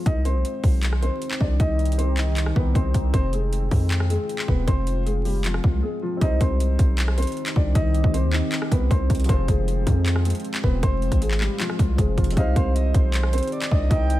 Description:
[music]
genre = hip hop, trap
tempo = 156 BPM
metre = 4/4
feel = half-time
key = C harmonic minor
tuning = A4 = 444 Hz
[part]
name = dark grand piano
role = melody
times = 0.0-14.2 s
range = F3 to Eb5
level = -28 LUFS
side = left 1 dB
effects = tape echo
[part]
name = deep dark ambient pad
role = sustained chords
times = 0.0-14.2 s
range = Eb3 to G4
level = -32 LUFS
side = equal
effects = chorus, built-in reverb
[part]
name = distorted 808-style bass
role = bass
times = 0.1-14.2 s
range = Eb1 to F2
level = -22 LUFS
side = equal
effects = distortion
[part]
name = trap drum kit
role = drums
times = 0.1-14.2 s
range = handclaps, hi-hat, kick drum, rim click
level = -24 LUFS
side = equal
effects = none
[part]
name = warm baby grand piano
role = accompaniment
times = 6.2-14.2 s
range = F3 to C5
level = -35 LUFS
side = left 2 dB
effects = none
[part]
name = breathy flute-like synth lead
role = second line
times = 12.4-14.2 s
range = C5 to G5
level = -31 LUFS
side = right 4 dB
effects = chorus, tape echo
[sound]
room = digital ambience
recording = vinyl crackle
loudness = -19 LUFS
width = side -15 dB against mid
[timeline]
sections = 0.0-6.2 A section; 6.2-14.2 B section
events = break 5.8-6.2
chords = 0.1 Cm; 3.1 Fm; 6.2 Cm; 9.3 Fm; 12.4 Cm

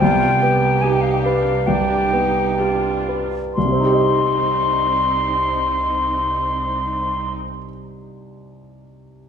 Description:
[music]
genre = classical, romantic movement for piano and orchestra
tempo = 58-75 BPM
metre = 4/4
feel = rubato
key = C minor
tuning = A4 = 440 Hz
[part]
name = warm concert grand piano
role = melody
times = 0.0-9.3 s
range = C2 to Eb5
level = -20 LUFS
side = right 1 dB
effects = none
[part]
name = concert flute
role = second line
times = 0.0-7.3 s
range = F5 to C6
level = -20 LUFS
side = left 2 dB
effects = none
[part]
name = rich studio viola section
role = accompaniment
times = 0.0-7.3 s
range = B3 to G4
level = -27 LUFS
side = right 2 dB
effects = none
[part]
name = rich studio double bass section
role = bass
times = 0.0-7.3 s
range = C2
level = -27 LUFS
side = right 2 dB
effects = none
[sound]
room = moderate scoring stage reverb, RT60 1.9 s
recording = minimal, uncompressed stereo recording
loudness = -16 LUFS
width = side -7 dB against mid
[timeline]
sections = 0.0-3.6 A section; 3.6-7.1 B section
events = slowing down 0.0-3.6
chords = 0.0 G7/C; 3.6 Cm

